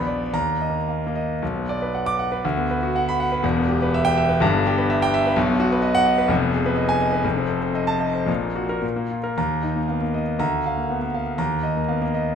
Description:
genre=classical, virtuoso piano study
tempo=108-130 BPM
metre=2/4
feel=rubato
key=B minor, Eb minor from 5.4 s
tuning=A4 = 440 Hz
part: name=clear concert grand piano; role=solo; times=0.0-12.3 s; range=E1 to D6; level=-19 LUFS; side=equal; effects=none
room=wet recital hall reverb, RT60 1.8 s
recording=none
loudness=-19 LUFS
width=side -7 dB against mid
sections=0.0-1.4 A section; 1.4-9.4 B section; 9.4-12.3 A section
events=none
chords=0.3 Eb5; 1.4 Bm; 2.4 Bm/D; 3.4 Em; 4.4 Em/G; 5.4 B; 6.3 Fm7b5; 7.2 F7; 8.3 Gb/Bb; 8.8 Bb5; 9.4 Eb5; 10.4 Bb/D; 11.4 Eb5

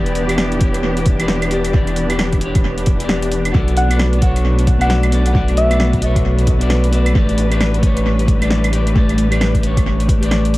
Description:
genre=future garage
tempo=133 BPM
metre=4/4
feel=swing 61% on 16ths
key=E dorian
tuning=A4 = 439 Hz
part: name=clean electric guitar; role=accompaniment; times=0.0-10.6 s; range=E3 to D5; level=-21 LUFS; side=left 2 dB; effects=sidechain pumping, dub echo
part: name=warm symphonic string section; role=sustained chords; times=0.0-10.6 s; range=A2 to B4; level=-22 LUFS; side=equal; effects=vintage 12-bit sampler grit, sidechain pumping
part: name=warm sub bass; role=bass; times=0.0-10.6 s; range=E1 to B1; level=-17 LUFS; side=equal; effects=sidechain pumping
part: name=deep house drum kit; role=drums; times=0.1-10.6 s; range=claves, hi-hat, snare drum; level=-22 LUFS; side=right 1 dB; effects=studio reverb, tape echo
part: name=electronic kick drum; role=drums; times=0.6-10.2 s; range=none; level=-16 LUFS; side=equal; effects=studio reverb
part: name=soft struck synth lead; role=melody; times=3.8-5.9 s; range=E5 to F#5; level=-23 LUFS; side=equal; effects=chorus, tape echo
room=light reverb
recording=echo-heavy mix, vinyl crackle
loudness=-13 LUFS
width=side -18 dB against mid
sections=0.0-10.6 A section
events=none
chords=0.0 Em7; 3.5 Bm7; 7.2 A9sus4

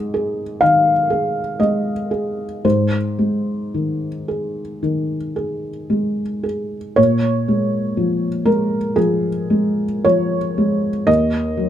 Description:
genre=neoclassical minimalist piano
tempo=54-63 BPM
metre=4/4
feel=rubato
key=Bb minor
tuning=A4 = 441 Hz
part: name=felt-muted upright piano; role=solo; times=0.0-11.7 s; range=Eb2 to F5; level=-17 LUFS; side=equal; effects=none
room=light reverb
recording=none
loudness=-17 LUFS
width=side -10 dB against mid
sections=0.0-7.0 A section; 7.0-11.7 B section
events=none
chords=0.0 Ab; 7.0 Bbm7; 11.1 Ebm

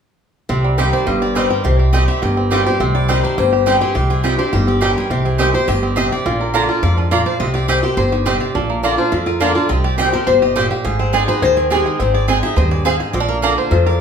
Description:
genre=bluegrass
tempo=209 BPM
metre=4/4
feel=straight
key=C minor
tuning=A4 = 435 Hz
part: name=bluegrass banjo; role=melody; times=0.5-14.0 s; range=G3 to C5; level=-22 LUFS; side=right 4 dB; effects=none
part: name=picked swing-style acoustic guitar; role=accompaniment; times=0.5-14.0 s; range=F2 to Ab4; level=-20 LUFS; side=equal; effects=none
part: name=upright bass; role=bass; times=0.5-14.0 s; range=G1 to F2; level=-18 LUFS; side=equal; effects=none
part: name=picked steel-string acoustic guitar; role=melody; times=0.8-14.0 s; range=D4 to G5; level=-21 LUFS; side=left 6 dB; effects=none
part: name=mandolin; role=stabs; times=0.8-13.5 s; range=Bb3 to Bb5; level=-20 LUFS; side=right 4 dB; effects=none
room=wet large studio reverb, RT60 0.9 s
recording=band playing live in one room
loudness=-14 LUFS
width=side -7 dB against mid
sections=0.5-14.0 A section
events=none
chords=0.5 Cm; 6.3 Bb; 7.4 Cm; 8.6 Bb; 9.7 Cm; 10.8 Ab; 13.1 Bb

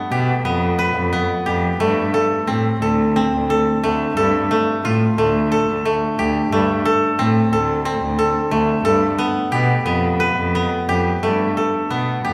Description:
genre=contemporary instrumental, contemporary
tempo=178 BPM (eighths)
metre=7/8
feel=straight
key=G mixolydian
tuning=A4 = 445 Hz
part: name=koto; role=arpeggios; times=0.0-12.3 s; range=A3 to B4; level=-21 LUFS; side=equal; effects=none
part: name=clear cello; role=bass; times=0.1-12.3 s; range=D2 to B2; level=-22 LUFS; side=equal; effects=none
room=wet scoring stage reverb, RT60 1.9 s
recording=recorded in a church or concert hall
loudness=-18 LUFS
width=mono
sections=0.0-11.2 A section; 11.2-12.3 A section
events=none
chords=0.0 G9; 1.8 F; 8.8 G9; 11.2 Gadd9

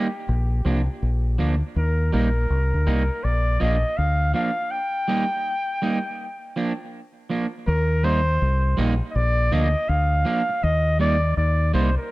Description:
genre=roots reggae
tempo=81 BPM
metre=4/4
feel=swing 64% on 16ths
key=unclear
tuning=A4 = 443 Hz
part: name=clear flugelhorn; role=melody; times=0.0-12.1 s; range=G4 to G5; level=-25 LUFS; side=equal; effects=tape echo
part: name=electric guitar at the edge of break-up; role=accompaniment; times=0.0-11.9 s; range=F3 to Eb4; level=-26 LUFS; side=right 3 dB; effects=tape echo
part: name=deep dub fingered electric bass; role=bass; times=0.3-12.0 s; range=Bb1 to Eb2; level=-20 LUFS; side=equal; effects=none
room=light reverb, small room ambience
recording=dark, warm production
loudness=-20 LUFS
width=side -19 dB against mid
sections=0.0-7.7 A section; 7.7-12.1 B section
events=break 4.7-7.7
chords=0.3 Bb; 1.8 Eb; 3.2 Bb; 4.7 Eb; 6.2 Bb; 7.7 Eb; 9.1 Bb; 10.6 Eb

